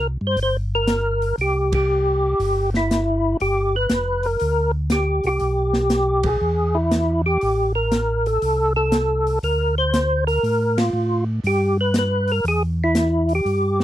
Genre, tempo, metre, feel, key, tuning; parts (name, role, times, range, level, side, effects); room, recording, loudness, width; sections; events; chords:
soul jazz organ trio; 119 BPM; 4/4; swing 68% on 8ths; A4 = 440 Hz
percussive tonewheel organ; melody; 0.0-13.8 s; E4 to C5; -20 LUFS; equal; slow rotary speaker, chorus vibrato
mellow tonewheel organ; bass; 0.0-13.8 s; F1 to A2; -22 LUFS; equal; slow rotary speaker
open jazz drum kit; drums; 0.4-13.8 s; hi-hat, kick drum, ride cymbal, snare drum; -25 LUFS; equal
light reverb; dry, close 1970s-style studio recording; -18 LUFS; side -13 dB against mid
0.0-13.8 A section
band accent 1.6, 6.2, 10.7
0.0 C7; 3.4 G7; 5.4 Abmmaj7/Cb; 6.4 Em; 7.4 Am; 9.4 D5; 11.4 G; 12.4 Em